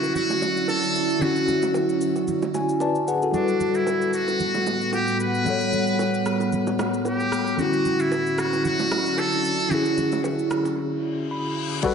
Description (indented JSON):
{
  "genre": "amapiano",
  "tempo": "113 BPM",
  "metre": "4/4",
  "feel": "swing 55% on 16ths",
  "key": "unclear",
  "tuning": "A4 = 440 Hz",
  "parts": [
    { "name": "trumpet with metal mute", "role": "melody", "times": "0.0-10.2 s", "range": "D4 to B4", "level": "-26 LUFS", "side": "equal", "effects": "ping-pong delay" },
    { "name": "tine electric piano", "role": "accompaniment", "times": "0.0-11.9 s", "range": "D3 to B5", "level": "-24 LUFS", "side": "left 2 dB", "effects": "medium tremolo" },
    { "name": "glassy FM pad", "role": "sustained chords", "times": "0.0-11.8 s", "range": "A2 to F#5", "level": "-27 LUFS", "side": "right 2 dB", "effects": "ensemble chorus, built-in reverb" },
    { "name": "smooth R&B drum kit", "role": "drums", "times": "0.0-11.9 s", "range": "crash cymbal, kick drum, rim click, shaker", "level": "-35 LUFS", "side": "right 1 dB", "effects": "none" },
    { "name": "bongos and congas", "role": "percussion", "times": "0.0-10.8 s", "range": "none", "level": "-32 LUFS", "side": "right 5 dB", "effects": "none" },
    { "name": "reverse cymbal", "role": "sound effects", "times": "11.1-11.8 s", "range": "none", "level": "-32 LUFS", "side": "left 6 dB", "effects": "none" }
  ],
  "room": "wet plate reverb, RT60 1.8 s",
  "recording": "dreamy mix soaked in reverb, nothing above 10.9 kHz",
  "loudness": "-21 LUFS",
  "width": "side -6 dB against mid",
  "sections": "0.0-11.8 A section",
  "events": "tine electric piano fill 2.3-3.3, 11.0-11.8; break 10.8-11.8; reverse cymbal 11.1-11.8",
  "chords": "0.0 Dmaj9; 3.3 Gmaj9; 7.6 Dmaj9"
}